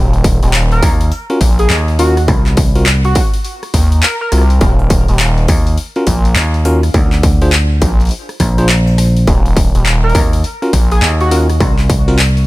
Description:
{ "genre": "glitch hop", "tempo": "103 BPM", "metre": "4/4", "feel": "swing 63% on 16ths", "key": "Eb dorian", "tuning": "A4 = 441 Hz", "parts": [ { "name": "gritty driven synth bass", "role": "bass", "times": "0.0-11.0 s", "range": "Eb1 to Eb2", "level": "-12 LUFS", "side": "equal", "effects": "overdrive" }, { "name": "dubstep drum kit", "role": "drums", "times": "0.1-12.5 s", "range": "handclaps, hi-hat, rim click", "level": "-19 LUFS", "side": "left 2 dB", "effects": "small room ambience" }, { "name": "electronic kick drum", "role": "drums", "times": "0.2-12.0 s", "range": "none", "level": "-13 LUFS", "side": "equal", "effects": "distortion, small room ambience" }, { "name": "sync lead", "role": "melody", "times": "0.7-4.3, 10.0-11.4 s", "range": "Gb4 to Bb4", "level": "-20 LUFS", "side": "equal", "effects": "chorus, dub echo" }, { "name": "vintage slap bass", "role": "bass", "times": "0.8-12.5 s", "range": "Bb1 to Eb2", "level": "-12 LUFS", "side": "equal", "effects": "none" }, { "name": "bell-like tine electric piano", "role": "stabs", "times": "1.3-12.2 s", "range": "C4 to C5", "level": "-20 LUFS", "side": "equal", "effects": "sidechain pumping, dub echo" } ], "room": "little or no reverb", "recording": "none", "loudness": "-10 LUFS", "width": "side -18 dB against mid", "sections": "0.0-12.5 A section", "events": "none", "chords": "0.0 Eb5; 2.3 Cm; 4.6 Eb5; 6.9 Bb; 9.3 Eb5; 11.6 N.C." }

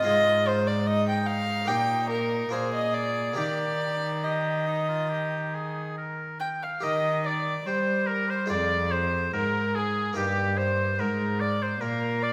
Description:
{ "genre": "classical, baroque-style sonata movement with continuo", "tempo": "71 BPM", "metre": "4/4", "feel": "uneven beats, rubato", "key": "Eb major", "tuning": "A4 = 441 Hz", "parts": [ { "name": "bright oboe", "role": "melody", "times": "0.0-12.3 s", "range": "Eb4 to G5", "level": "-32 LUFS", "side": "equal", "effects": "none" }, { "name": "warm violin", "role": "second line", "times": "0.0-12.3 s", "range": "G4 to G5", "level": "-30 LUFS", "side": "equal", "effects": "none" }, { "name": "harpsichord", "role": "accompaniment", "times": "0.0-12.3 s", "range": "F2 to Bb4", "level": "-39 LUFS", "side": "equal", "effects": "none" }, { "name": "rich cello", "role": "bass", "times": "0.0-12.3 s", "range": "F2 to G3", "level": "-32 LUFS", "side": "equal", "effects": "none" } ], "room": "moderate recital hall reverb, RT60 1.4 s", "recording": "none", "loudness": "-27 LUFS", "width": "mono", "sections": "0.0-6.8 A section; 6.8-12.3 B section", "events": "none", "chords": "0.1 Fm7/Ab; 1.7 Eb/Bb; 2.5 Bb; 3.4 Eb; 8.5 Fmadd11; 10.2 Eb/G" }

